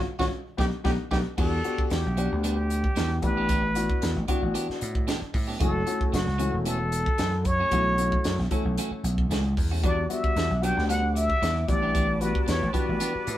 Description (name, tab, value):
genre	electric jazz fusion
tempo	114 BPM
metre	4/4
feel	straight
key	E dorian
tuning	A4 = 435 Hz
part	vintage slap bass	bass	0.0-13.4 s	E1 to A2	-27 LUFS	equal	none
part	trumpet with plunger mute	melody	0.2-13.4 s	F#4 to G5	-29 LUFS	equal	none
part	warm grand piano	accompaniment	0.2-13.4 s	G3 to F#5	-32 LUFS	left 4 dB	none
part	clean electric guitar	stabs	0.2-13.3 s	E3 to G4	-35 LUFS	right 3 dB	none
part	crisp fusion drum kit	drums	0.2-13.4 s	crash cymbal, hi-hat, kick drum, snare drum	-29 LUFS	right 1 dB	none
part	phased analog pad	sustained chords	9.8-13.4 s	B4 to D6	-39 LUFS	left 1 dB	phaser, chorus
room	light reverb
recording	band playing live in one room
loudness	-23 LUFS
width	side -13 dB against mid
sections	0.0-1.4 A section; 1.4-13.4 B section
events	band accent 0.0-1.4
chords	0.3 Baug7; 1.4 Em9; 3.2 A9sus4; 5.6 F#m7; 7.7 B9sus4; 9.8 Em9; 11.7 A9sus4